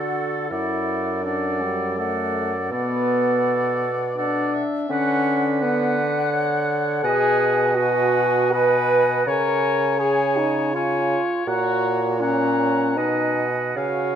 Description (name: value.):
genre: classical, slow romantic movement for wind quintet.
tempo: 82 BPM.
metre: 3/4.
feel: rubato.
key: unclear.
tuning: A4 = 440 Hz.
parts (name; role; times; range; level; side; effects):
mellow hollow silver concert flute; melody; 0.0-14.2 s; F#5 to A#5; -28 LUFS; left 9 dB; none.
warm oboe; second line; 0.0-14.2 s; A4 to F#5; -28 LUFS; left 2 dB; none.
bright clarinet; accompaniment; 0.0-14.2 s; A4 to D#5; -29 LUFS; right 10 dB; none.
warm French horn; accompaniment; 0.0-14.2 s; G3 to B4; -23 LUFS; equal; none.
mellow bassoon; bass; 0.0-14.2 s; F#2 to D3; -24 LUFS; right 2 dB; none.
room: moderate scoring stage reverb, RT60 1.9 s.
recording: none.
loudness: -19 LUFS.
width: side -8 dB against mid.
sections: 0.0-14.2 A section.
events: none.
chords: 0.0 D; 0.5 D/F#; 2.7 Bm7; 4.9 Bm/D; 7.0 G#m7/B; 9.3 C#; 11.5 F#/A#; 13.0 G#m7/B.